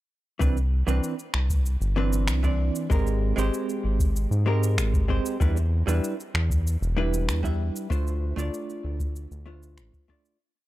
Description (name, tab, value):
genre	sunset chillout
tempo	96 BPM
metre	4/4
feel	straight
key	C major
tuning	A4 = 436 Hz
part	vintage hollow-body jazz guitar	accompaniment	0.4-10.4 s	E3 to E5	-29 LUFS	moving between left 4 dB and right 3 dB	auto-pan, analog delay, shimmer reverb
part	round analog bass	bass	0.4-9.9 s	E1 to Ab2	-24 LUFS	equal	none
part	electronic kick drum	drums	0.4-10.2 s	none	-25 LUFS	equal	none
part	electronic shaker and finger snaps	drums	0.4-10.4 s	none	-33 LUFS	equal	overdrive
room	little or no reverb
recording	dry, gritty hardware recording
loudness	-23 LUFS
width	side -16 dB against mid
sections	0.4-10.4 groove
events	fade-out 7.1-10.4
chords	0.4 Cmaj9; 2.9 Abmaj9; 5.4 Em7; 7.9 Dm7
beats	| 0.40 1.03 1.65 2.28 | 2.90 3.53 4.15 4.78 | 5.40 6.03 6.65 7.28 | 7.90 8.53 9.15 9.78